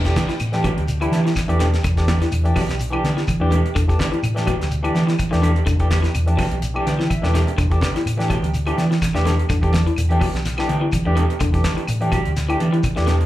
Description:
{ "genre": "afrobeat", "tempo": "126 BPM", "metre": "4/4", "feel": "swing 55% on 16ths", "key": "E minor", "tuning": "A4 = 440 Hz", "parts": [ { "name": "barky tine electric piano", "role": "accompaniment", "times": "0.0-13.2 s", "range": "E3 to G5", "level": "-26 LUFS", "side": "left 2 dB", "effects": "phaser, slapback echo" }, { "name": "electric guitar through a small old amp", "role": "arpeggios", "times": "0.0-13.2 s", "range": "D3 to F#3", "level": "-27 LUFS", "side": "left 4 dB", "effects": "wide subtle chorus, slapback echo" }, { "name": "electric guitar at the edge of break-up", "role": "stabs", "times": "0.0-13.2 s", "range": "B3 to G4", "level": "-27 LUFS", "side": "right 5 dB", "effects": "tremolo, slapback echo" }, { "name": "hollow-body short-scale fingered electric bass", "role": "bass", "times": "0.0-13.3 s", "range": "B1 to E3", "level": "-20 LUFS", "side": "equal", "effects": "none" }, { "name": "damped 70s drum kit", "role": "drums", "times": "0.0-13.3 s", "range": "hi-hat, kick drum, snare drum", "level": "-24 LUFS", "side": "equal", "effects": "none" }, { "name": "congas", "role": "percussion", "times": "0.1-13.2 s", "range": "none", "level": "-27 LUFS", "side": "right 2 dB", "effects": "slapback echo" }, { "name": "shekere", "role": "percussion", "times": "0.2-13.2 s", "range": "none", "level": "-30 LUFS", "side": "equal", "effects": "slapback echo" }, { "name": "claves", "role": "percussion", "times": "0.4-13.0 s", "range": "none", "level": "-33 LUFS", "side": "left 3 dB", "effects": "none" } ], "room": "little or no reverb", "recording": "live gig heard through the venue's PA, club reverb", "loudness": "-17 LUFS", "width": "side -14 dB against mid", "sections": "0.0-13.3 A section", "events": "tine electric piano fill 6.6-7.6; drum fill 7.0-7.6", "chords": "0.0 Em7" }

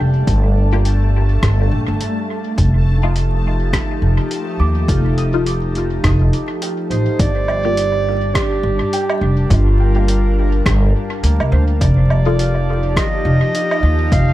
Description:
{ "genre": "ambient dub", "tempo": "104 BPM", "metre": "4/4", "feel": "swing 57% on 16ths", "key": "G minor", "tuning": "A4 = 439 Hz", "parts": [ { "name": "airy breathy pad", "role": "sustained chords", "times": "0.0-14.3 s", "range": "F3 to A5", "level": "-24 LUFS", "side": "left 1 dB", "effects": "chorus" }, { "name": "concert harp", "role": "arpeggios", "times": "0.0-14.3 s", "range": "A3 to Eb6", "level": "-28 LUFS", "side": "right 2 dB", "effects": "tape echo" }, { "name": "upright bass", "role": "bass", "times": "0.0-14.3 s", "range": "F1 to Eb2", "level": "-15 LUFS", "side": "equal", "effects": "none" }, { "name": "bubbling stepped-filter texture", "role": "texture", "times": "0.0-7.2 s", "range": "A3 to A5", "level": "-27 LUFS", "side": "equal", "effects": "chorus, built-in reverb" }, { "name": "electronic kick drum", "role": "drums", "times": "0.3-14.3 s", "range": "none", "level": "-20 LUFS", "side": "equal", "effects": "overdrive" }, { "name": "lo-fi sampler-style drum kit", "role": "drums", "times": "0.3-14.3 s", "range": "hi-hat, rim click, woodblock", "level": "-25 LUFS", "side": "right 1 dB", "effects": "overdrive, dub echo" }, { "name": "filtered dub chord stab", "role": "stabs", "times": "0.7-12.4 s", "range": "A3 to G4", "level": "-25 LUFS", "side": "left 4 dB", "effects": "phaser, analog chorus, vintage 12-bit sampler grit, dub echo" }, { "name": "warm clarinet", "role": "melody", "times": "6.9-14.3 s", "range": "F4 to F5", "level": "-21 LUFS", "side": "right 2 dB", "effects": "dub echo" } ], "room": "light reverb, digital ambience", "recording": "echo-heavy mix, vinyl crackle", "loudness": "-14 LUFS", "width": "side -15 dB against mid", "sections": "0.0-7.2 A section; 7.2-14.3 B section", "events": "none", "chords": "0.0 Gm7; 2.6 F7; 7.2 Gm7; 11.8 F7" }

